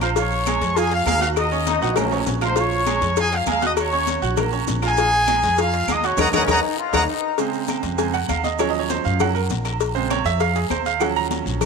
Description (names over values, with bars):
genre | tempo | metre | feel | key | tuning
latin, salsa | 199 BPM | 4/4 | straight | Bb minor | A4 = 440 Hz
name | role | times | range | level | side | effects
bright trumpet section | melody | 0.0-7.0 s | Ab4 to Eb6 | -21 LUFS | left 1 dB | none
bright grand piano | accompaniment | 0.0-11.7 s | Db3 to Gb6 | -24 LUFS | right 13 dB | none
upright bass | bass | 0.0-11.7 s | Bb1 to Gb2 | -25 LUFS | left 1 dB | none
agogo bells and timbales | percussion | 0.0-11.7 s | none | -30 LUFS | right 12 dB | none
claves | percussion | 0.0-11.7 s | none | -36 LUFS | left 15 dB | none
congas | percussion | 0.0-11.7 s | none | -31 LUFS | left 15 dB | none
cowbell | percussion | 0.0-11.7 s | none | -27 LUFS | left 14 dB | none
guiro | percussion | 0.0-11.7 s | none | -36 LUFS | left 16 dB | none
maracas | percussion | 0.0-11.7 s | none | -36 LUFS | right 18 dB | none
bright trombone section | second line | 1.7-2.3, 6.3-7.4 s | Bb3 to F4 | -27 LUFS | left 11 dB | none
room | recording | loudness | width
moderate plate reverb, RT60 2.3 s | 1960s-style stereo with parts hard left and right | -18 LUFS | side -5 dB against mid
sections
0.0-7.4 A section; 7.4-11.7 B section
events
drum fill 1.8-2.6, 6.5-7.4; band accent 6.2-7.4; grand piano solo 7.4-11.7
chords
0.2 Bbm7; 1.4 Ebm7; 2.6 Bbm7; 6.2 Eb7(no3); 7.4 Eb13sus4; 8.6 Ebm7; 9.8 Bbm7; 11.0 Ebm7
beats
| 0.16 0.47 0.77 1.07 | 1.37 1.67 1.97 2.27 | 2.57 2.87 3.17 3.47 | 3.77 4.08 4.38 4.68 | 4.98 5.28 5.58 5.88 | 6.18 6.48 6.79 7.09 | 7.39 7.69 7.99 8.29 | 8.60 8.90 9.20 9.50 | 9.80 10.11 10.41 10.71 | 11.01 11.31 11.62